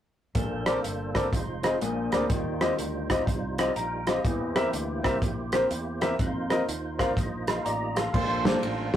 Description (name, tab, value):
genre	uptempo gospel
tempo	123 BPM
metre	4/4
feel	swing 64% on 8ths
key	Bb major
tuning	A4 = 440 Hz
part	clear concert grand piano	accompaniment	0.3-9.0 s	Bb2 to C6	-28 LUFS	left 2 dB	none
part	warm soul drum kit	drums	0.3-9.0 s	crash cymbal, hi-hat, kick drum, ride cymbal, rim click, snare drum	-28 LUFS	right 1 dB	none
part	percussive tonewheel organ	sustained chords	0.4-9.0 s	G3 to Bb5	-35 LUFS	right 2 dB	slow rotary speaker, overdrive, chorus vibrato
part	fingered electric bass	bass	0.4-9.0 s	F1 to F2	-35 LUFS	right 1 dB	none
part	warm horn section	melody	8.1-9.0 s	D4 to C5	-30 LUFS	right 4 dB	none
room	wet small room reverb, RT60 0.5 s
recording	rough rehearsal-room recording, warm saturation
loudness	-25 LUFS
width	side -10 dB against mid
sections	0.4-8.1 A section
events	grand piano fill 3.5-4.2; tonewheel organ fill 6.7-8.1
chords	0.4 Bbmaj9; 1.3 Fm7; 1.8 Bb9; 2.3 Eb69; 4.2 C7; 6.2 F7sus4; 8.1 Bbmaj9